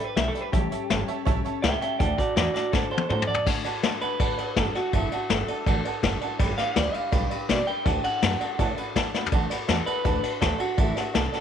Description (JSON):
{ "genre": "rockabilly", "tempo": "164 BPM", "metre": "4/4", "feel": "straight", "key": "D major", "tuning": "A4 = 440 Hz", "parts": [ { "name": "electric guitar through a small old amp", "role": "melody", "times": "0.0-11.4 s", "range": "E4 to G5", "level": "-28 LUFS", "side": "right 2 dB", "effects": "tape echo" }, { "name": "honky-tonk upright piano", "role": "accompaniment", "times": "0.0-11.4 s", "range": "C#5 to D6", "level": "-32 LUFS", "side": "right 13 dB", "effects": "none" }, { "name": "picked steel-string acoustic guitar", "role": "accompaniment", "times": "0.0-11.4 s", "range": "A2 to B4", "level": "-35 LUFS", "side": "left 11 dB", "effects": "none" }, { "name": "upright bass", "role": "bass", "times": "0.2-11.4 s", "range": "F#1 to B2", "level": "-30 LUFS", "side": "right 2 dB", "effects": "none" }, { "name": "vintage brush drum kit", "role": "drums", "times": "0.2-11.4 s", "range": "crash cymbal, hi-hat, kick drum, ride cymbal, snare drum, toms", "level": "-26 LUFS", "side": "left 3 dB", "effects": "none" } ], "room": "light reverb, small room ambience", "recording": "1960s-style stereo with parts hard left and right", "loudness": "-23 LUFS", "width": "side -8 dB against mid", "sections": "0.0-3.5 A section; 3.5-11.4 B section", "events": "drum fill 2.7-3.5, 9.1", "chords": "0.0 G; 0.5 A7; 2.0 D; 6.4 G; 7.9 D" }